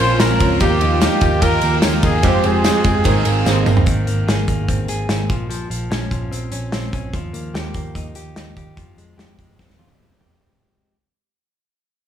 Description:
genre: jangly indie pop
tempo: 147 BPM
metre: 4/4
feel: straight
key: Ab major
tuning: A4 = 439 Hz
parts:
  - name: clear trumpet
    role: melody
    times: 0.0-3.7 s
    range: G4 to C5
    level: -22 LUFS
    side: left 2 dB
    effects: slapback echo
  - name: vibraphone with medium hard mallets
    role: second line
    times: 0.0-3.7 s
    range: G5 to C6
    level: -26 LUFS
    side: right 7 dB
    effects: slapback echo
  - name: chorused retro synth keys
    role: accompaniment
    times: 0.0-3.9 s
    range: Ab3 to Bb4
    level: -22 LUFS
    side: right 2 dB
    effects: tube saturation
  - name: picked twelve-string acoustic guitar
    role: accompaniment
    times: 0.0-3.9 s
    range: F2 to C5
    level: -24 LUFS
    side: right 8 dB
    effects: none
  - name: direct-recorded clean electric guitar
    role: arpeggios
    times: 0.0-10.9 s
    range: Eb3 to Ab4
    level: -25 LUFS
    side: left 4 dB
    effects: slapback echo
  - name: vintage muted picked electric bass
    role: bass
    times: 0.0-10.4 s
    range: F1 to F2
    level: -21 LUFS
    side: equal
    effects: none
  - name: tambourine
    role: percussion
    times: 0.0-3.8 s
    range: none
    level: -36 LUFS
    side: left 11 dB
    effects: none
  - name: loose indie drum kit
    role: drums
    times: 0.2-10.4 s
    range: hi-hat, kick drum, ride cymbal, snare drum, toms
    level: -20 LUFS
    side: equal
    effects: none
room: small room ambience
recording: studio reverb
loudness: -15 LUFS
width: side -9 dB against mid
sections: 0.0-3.9 A section; 3.9-10.4 B section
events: drum fill 3.5-3.9, 9.6-10.4; fade-out 3.9-10.4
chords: 0.0 Bbmadd9; 0.6 Ebadd9; 2.2 Fmadd9; 3.1 Abadd9; 5.3 Bbmadd9; 7.1 Ebadd9; 8.8 Fmadd9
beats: 0.20 | 0.61 1.02 1.42 1.83 | 2.24 2.65 3.05 3.46 | 3.87 4.28 4.68 5.09 | 5.50 5.91 6.32 6.72 | 7.13 7.54 7.95 8.36 | 8.77 9.18 9.59 10.00

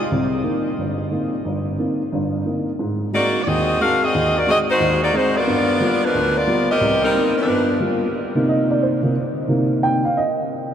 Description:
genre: jazz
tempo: 179 BPM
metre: 4/4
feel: swing 64% on 8ths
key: C minor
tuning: A4 = 441 Hz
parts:
  - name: edgy saxophone section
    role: melody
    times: 0.0-0.1, 3.1-7.8 s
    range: F3 to F5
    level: -20 LUFS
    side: equal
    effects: none
  - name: dark upright piano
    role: accompaniment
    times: 0.1-10.5 s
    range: G1 to G5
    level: -20 LUFS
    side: equal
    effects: none
room: wet cathedral reverb, RT60 7.7 s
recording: in a vast, echoing space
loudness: -17 LUFS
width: side -9 dB against mid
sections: 0.0-8.1 A section; 8.1-10.7 B section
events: upright piano solo 8.1-10.7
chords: 0.1 Cm7; 2.8 Ab7; 5.5 G7#9; 6.8 Cm7; 7.5 G7#9; 8.1 Cm7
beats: | 0.11 0.44 0.78 1.11 | 1.45 1.78 2.12 2.45 | 2.79 3.12 3.46 3.79 | 4.12 4.46 4.79 5.13 | 5.47 5.80 6.14 6.47 | 6.81 7.14 7.48 7.81 | 8.15 8.48 8.82 9.16 | 9.49 9.83 10.16

